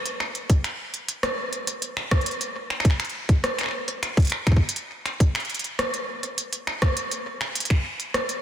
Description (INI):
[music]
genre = IDM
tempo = 102 BPM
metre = 4/4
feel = straight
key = none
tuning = none
[part]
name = organic electronic drum kit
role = drums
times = 0.1-8.4 s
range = finger snaps, hi-hat, rim click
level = -26 LUFS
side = equal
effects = soft clipping on snare, digital delay
[part]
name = electronic kick drum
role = drums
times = 0.5-7.8 s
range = none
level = -18 LUFS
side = equal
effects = none
[sound]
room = moderate lush hall reverb, RT60 2.2 s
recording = dense, heavily limited modern master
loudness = -22 LUFS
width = side -10 dB against mid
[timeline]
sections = 0.0-8.4 A section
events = none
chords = none